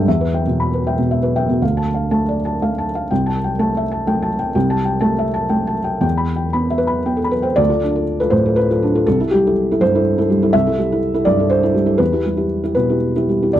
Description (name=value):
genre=neoclassical minimalist piano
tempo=114-126 BPM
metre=3/4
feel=rubato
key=D dorian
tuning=A4 = 439 Hz
part: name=felt-muted upright piano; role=solo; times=0.0-13.6 s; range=C2 to B5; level=-15 LUFS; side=equal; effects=none
room=little or no reverb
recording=dry, close 1970s-style studio recording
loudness=-15 LUFS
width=side -12 dB against mid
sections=0.0-1.6 A section; 1.6-7.6 B section; 7.6-13.6 C section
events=none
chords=0.1 Em; 1.6 Dm; 3.1 C6; 6.0 Em; 7.6 Dm; 9.1 C6; 12.0 Em